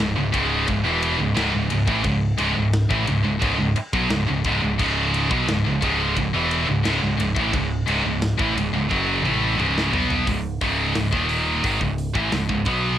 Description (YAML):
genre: heavy metal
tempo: 88 BPM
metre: 4/4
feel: straight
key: C# minor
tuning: A4 = 440 Hz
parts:
  - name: scooped high-gain guitar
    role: riff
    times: 0.0-13.0 s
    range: C#2 to B3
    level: -23 LUFS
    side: left 7 dB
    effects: distortion, cassette tape
  - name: scooped high-gain guitar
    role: riff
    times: 0.0-13.0 s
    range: C#2 to B3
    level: -23 LUFS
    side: right 5 dB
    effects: distortion, cassette tape
  - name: growling picked electric bass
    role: bass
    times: 0.0-13.0 s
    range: C#1 to B1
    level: -27 LUFS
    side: equal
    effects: overdrive
  - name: tight metal drum kit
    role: drums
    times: 0.0-12.8 s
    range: crash cymbal, hi-hat, kick drum, ride cymbal, snare drum, toms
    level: -29 LUFS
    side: equal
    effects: none
room: little or no reverb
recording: home recording on cassette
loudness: -19 LUFS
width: side -11 dB against mid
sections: 0.0-10.3 A section; 10.3-13.0 B section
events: drum fill 8.9-10.3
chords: 0.0 C#m; 10.3 C#5